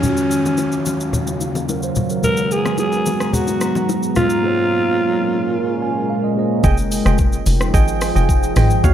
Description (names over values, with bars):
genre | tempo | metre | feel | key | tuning
amapiano | 109 BPM | 4/4 | straight | F phrygian | A4 = 440 Hz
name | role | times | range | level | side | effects
breathy alto saxophone | melody | 0.0-6.3 s | Db4 to Bb4 | -20 LUFS | equal | diffuse ambient delay
mellow tine electric piano | accompaniment | 0.0-6.7 s | Eb3 to Ab5 | -24 LUFS | right 4 dB | lush chorus
deep dark ambient pad | sustained chords | 0.0-8.9 s | Eb2 to Bb5 | -21 LUFS | equal | chorus, built-in reverb, sidechain pumping
smooth R&B drum kit | drums | 0.0-8.9 s | hi-hat, kick drum, rim click, shaker, toms | -20 LUFS | equal | none
congas and bongos | percussion | 0.0-4.3 s | none | -24 LUFS | left 3 dB | none
downlifter | sound effects | 0.0-2.2 s | none | -34 LUFS | equal | none
percussive organ stab | stabs | 6.6-8.9 s | Gb4 to G5 | -23 LUFS | right 10 dB | chorus, diffuse ambient delay
tight log drum bass | bass | 6.6-8.9 s | F1 to Eb2 | -17 LUFS | equal | none
room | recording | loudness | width
moderate plate reverb, RT60 1.5 s | dreamy mix soaked in reverb | -15 LUFS | side -10 dB against mid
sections
0.0-6.6 A section; 6.6-8.9 B section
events
tine electric piano fill 5.5-6.6; drop 6.6-8.9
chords
0.0 Ebm9; 2.2 Abm9; 4.4 Bbm9; 6.6 Fm9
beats
| 0.03 0.58 1.13 1.68 | 2.23 2.79 3.34 3.89 | 4.44 4.99 5.54 6.09 | 6.64 7.19 7.74 8.29 | 8.84